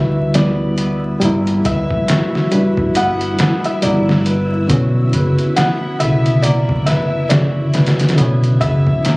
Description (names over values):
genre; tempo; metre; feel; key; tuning
trip hop; 69 BPM; 4/4; swing 59% on 16ths; B harmonic minor; A4 = 438 Hz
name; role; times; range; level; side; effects
felt-muted upright piano; melody; 0.0-9.2 s; D5 to F#5; -22 LUFS; equal; tape echo
reed electric piano; accompaniment; 0.0-9.2 s; C#3 to E4; -18 LUFS; equal; fast tremolo, tape echo
string machine, cellos; sustained chords; 0.0-9.2 s; E4 to E5; -27 LUFS; equal; phaser, ensemble chorus
concert harp; arpeggios; 0.0-9.2 s; A#3 to B4; -24 LUFS; equal; tape echo
upright bass; bass; 0.0-8.8 s; F#1 to D2; -18 LUFS; equal; none
trip hop sampler-style drum kit; drums; 0.3-9.2 s; hi-hat, kick drum, snare drum; -18 LUFS; equal; overdrive
room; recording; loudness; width
light reverb, small room ambience; recorded on a phone in the room, club reverb, vinyl crackle; -13 LUFS; side -24 dB against mid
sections
0.0-9.2 A section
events
none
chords
0.0 G6; 4.7 Bmadd9